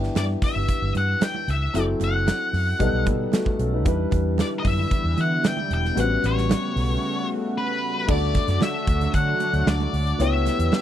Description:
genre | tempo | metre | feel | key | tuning
polished 1980s jazz-funk pop | 114 BPM | 4/4 | straight | D major | A4 = 437 Hz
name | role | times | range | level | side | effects
dark concert grand piano | accompaniment | 0.0-10.8 s | E3 to D5 | -27 LUFS | left 2 dB | wide subtle chorus
vintage muted fingered electric bass | bass | 0.0-10.7 s | E1 to E3 | -24 LUFS | equal | none
modern studio drum kit | drums | 0.0-10.8 s | crash cymbal, hi-hat, kick drum, snare drum | -24 LUFS | right 1 dB | none
octave-fuzz lead guitar | melody | 0.2-10.8 s | B4 to G5 | -27 LUFS | left 2 dB | distortion
congas | percussion | 0.2-10.8 s | none | -36 LUFS | right 19 dB | none
lush unison pad | sustained chords | 4.4-10.8 s | C#3 to G4 | -29 LUFS | equal | chorus
room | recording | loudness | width
little or no reverb | dry, close 1970s-style studio recording | -20 LUFS | side -11 dB against mid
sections
0.0-8.1 A section; 8.1-10.8 B section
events
break 7.0-8.1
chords
0.0 G6; 1.7 F#m7b5; 2.8 B7b13; 3.9 Em7; 6.0 A13; 8.1 D; 10.2 C#m7b5

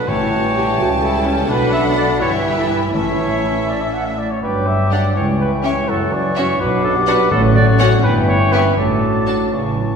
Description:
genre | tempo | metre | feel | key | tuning
quick classical-period movement for symphony orchestra | 82 BPM (dotted quarters) | 6/8 | rubato | unclear | A4 = 440 Hz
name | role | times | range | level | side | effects
rich studio violin section | melody | 0.0-9.4 s | E5 to A5 | -29 LUFS | left 3 dB | none
mellow silver concert flute | second line | 0.0-10.0 s | A5 to D6 | -25 LUFS | left 2 dB | none
warm oboe | second line | 0.0-10.0 s | E5 to A5 | -26 LUFS | left 2 dB | none
warm studio violin section | second line | 0.0-9.4 s | E4 to A4 | -27 LUFS | left 4 dB | none
mellow bassoon | accompaniment | 0.0-10.0 s | D3 to A3 | -25 LUFS | right 1 dB | none
rich studio viola section | accompaniment | 0.0-9.4 s | B3 to G4 | -27 LUFS | left 1 dB | none
dark French horn section | sustained chords | 0.0-10.0 s | E3 to F#4 | -23 LUFS | left 2 dB | none
mellow trumpet | stabs | 0.0-9.5 s | A4 to F#5 | -21 LUFS | right 1 dB | none
rich studio cello section | bass | 0.0-10.0 s | C#2 to F#3 | -23 LUFS | right 2 dB | none
rich studio double bass section | bass | 0.0-10.0 s | F#1 to C#2 | -20 LUFS | right 1 dB | none
timpani | percussion | 0.1-0.7, 2.9-3.6, 7.3-8.0 s | A2 | -27 LUFS | left 1 dB | none
room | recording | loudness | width
wet scoring stage reverb, RT60 1.9 s | heard from further back in the room | -14 LUFS | side -6 dB against mid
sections
0.0-10.0 A section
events
none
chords
0.1 A7; 1.5 Bm; 2.2 Em/G; 2.9 A; 4.4 G5; 5.2 C#dim; 5.9 F#5; 6.6 Bm; 7.3 F#m/A; 8.0 Em/G; 8.8 D/A

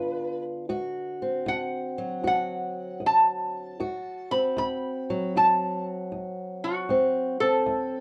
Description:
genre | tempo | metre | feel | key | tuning
acoustic country blues, solo or duo | 77 BPM | 4/4 | swing 66% on 8ths | D mixolydian | A4 = 440 Hz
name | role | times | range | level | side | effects
lap resonator guitar | melody | 0.0-8.0 s | F#4 to B5 | -28 LUFS | equal | none
fingerpicked old ladder-braced acoustic guitar | accompaniment | 0.0-8.0 s | D2 to F#4 | -31 LUFS | equal | none
room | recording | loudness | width
moderate small room reverb, RT60 0.5 s | worn, warbling old tape, cassette tape, warbly pitch drift | -27 LUFS | mono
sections
0.0-6.9 A section; 6.9-8.0 B section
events
resonator guitar played with a steel bar solo 0.0-6.9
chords
0.0 G7; 0.7 D7

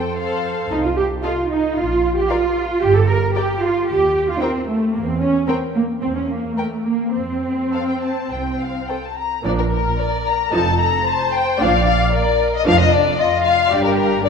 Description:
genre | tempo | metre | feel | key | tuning
quick classical-period movement for string orchestra | 112 BPM | 4/4 | rubato | Bb major | A4 = 440 Hz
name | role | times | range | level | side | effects
muted studio violin section | melody | 0.0-14.3 s | Bb4 to Bb5 | -20 LUFS | left 7 dB | none
muted symphonic violin section | second line | 0.0-14.3 s | D4 to Eb5 | -24 LUFS | left 1 dB | none
muted symphonic double bass section | bass | 0.0-14.3 s | F1 to F2 | -24 LUFS | right 3 dB | none
muted symphonic viola section | accompaniment | 0.7-14.3 s | F3 to Bb4 | -23 LUFS | right 1 dB | none
muted symphonic cello section | bass | 0.7-14.3 s | F2 to Bb4 | -22 LUFS | right 3 dB | none
room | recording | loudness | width
wet scoring stage reverb, RT60 2.0 s | recorded in a church or concert hall | -16 LUFS | side -6 dB against mid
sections
0.0-9.4 A section; 9.4-14.3 B section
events
none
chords
0.0 F; 0.7 F7(no3)/C; 1.8 Bb5; 2.8 Gm; 3.9 Cm/Eb; 4.9 Edim7(no3); 7.1 F; 9.4 Bb; 10.5 F7; 11.6 Bb; 13.7 Gm

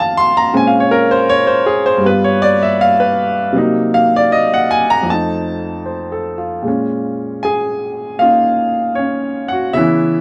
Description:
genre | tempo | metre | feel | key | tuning
solo jazz | 78 BPM | 4/4 | swing 69% on 8ths, rubato | Bb minor | A4 = 440 Hz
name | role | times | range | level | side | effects
clear upright piano | solo | 0.0-10.2 s | F2 to C6 | -15 LUFS | equal | none
room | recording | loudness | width
moderate studio reverb, RT60 0.5 s | none | -15 LUFS | mono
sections
0.0-6.7 A section; 6.7-10.2 B section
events
upright piano solo 0.0-6.7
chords
0.0 F7b13; 0.5 Bbm9; 2.0 G7; 3.5 Cm7b5; 5.1 F7; 6.7 Bbm7

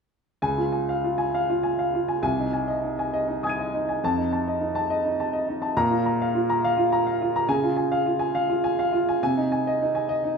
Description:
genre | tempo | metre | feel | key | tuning
neoclassical minimalist piano | 69 BPM (dotted quarters) | 6/8 | rubato | Db major | A4 = 441 Hz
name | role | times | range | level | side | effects
warm baby grand piano | solo | 0.4-10.4 s | C2 to Eb7 | -22 LUFS | equal | none
room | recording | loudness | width
wet recital hall reverb, RT60 1.4 s | recorded in a church or concert hall | -22 LUFS | side -5 dB against mid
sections
0.4-10.4 A section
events
none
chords
0.4 Db; 2.2 Ab/C; 4.0 F7; 5.8 Bb5; 7.5 Db; 9.2 Ab/C

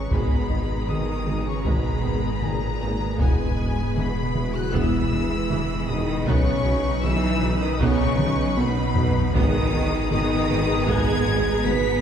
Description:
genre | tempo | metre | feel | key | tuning
cinematic, hybrid orchestral and electronic film score | 78 BPM | 4/4 | straight | G# minor | A4 = 440 Hz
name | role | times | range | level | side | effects
rich symphonic violin section | melody | 0.0-12.0 s | G#5 to B6 | -31 LUFS | left 4 dB | none
clear symphonic violin section | second line | 0.0-12.0 s | B4 to B5 | -34 LUFS | equal | none
warm symphonic viola section | accompaniment | 0.0-12.0 s | C#3 to G#4 | -31 LUFS | right 1 dB | none
airy breathy pad | sustained chords | 0.0-12.0 s | D#3 to B4 | -32 LUFS | right 2 dB | chorus
mellow French horn section | sustained chords | 0.0-12.0 s | A#2 to B4 | -29 LUFS | left 1 dB | none
pure sine sub bass | bass | 0.0-12.0 s | E1 to B1 | -30 LUFS | equal | none
warm symphonic cello section | bass | 0.0-12.0 s | G#2 to B3 | -29 LUFS | right 2 dB | none
harp-like synth pluck | arpeggios | 0.1-11.9 s | E3 to B4 | -35 LUFS | right 1 dB | none
mellow tuba | bass | 0.1-11.8 s | E1 to B1 | -31 LUFS | right 2 dB | none
rich studio double bass section | bass | 0.1-11.7 s | E1 to B1 | -29 LUFS | right 1 dB | none
taiko ensemble | drums | 0.1-12.0 s | none | -27 LUFS | left 1 dB | none
room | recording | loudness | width
wet scoring stage reverb, RT60 1.5 s | heard from further back in the room | -20 LUFS | side -8 dB against mid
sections
0.0-12.0 A section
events
drum fill 8.2-9.4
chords
0.0 G#madd9; 3.2 E; 6.3 Badd9; 9.4 G#madd9

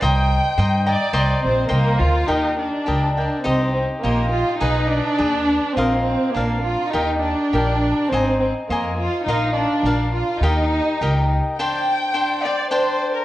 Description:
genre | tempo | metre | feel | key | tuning
mexican folk, mariachi | 104 BPM | 2/4 | rubato | Eb major | A4 = 440 Hz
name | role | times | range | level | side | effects
rich chamber violin section | melody | 0.0-13.2 s | Bb3 to G5 | -20 LUFS | equal | none
cavaquinho | accompaniment | 0.0-13.2 s | D4 to Bb5 | -23 LUFS | left 1 dB | none
upright bass | bass | 0.0-11.4 s | Ab1 to G2 | -21 LUFS | equal | none
room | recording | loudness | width
wet recital hall reverb, RT60 1.4 s | worn, warbling old tape, cassette tape, warbly pitch drift | -17 LUFS | side -15 dB against mid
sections
0.0-2.3 A section; 2.3-11.6 B section; 11.6-13.2 A section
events
none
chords
0.0 Cm7; 2.3 Eb; 3.5 Cm; 4.6 Abm/Cb; 5.8 Bbsus4; 6.4 Bb; 7.0 Eb; 8.1 Abadd9; 9.3 Bbsus4; 9.8 Bb; 10.4 Eb; 11.6 Csus2

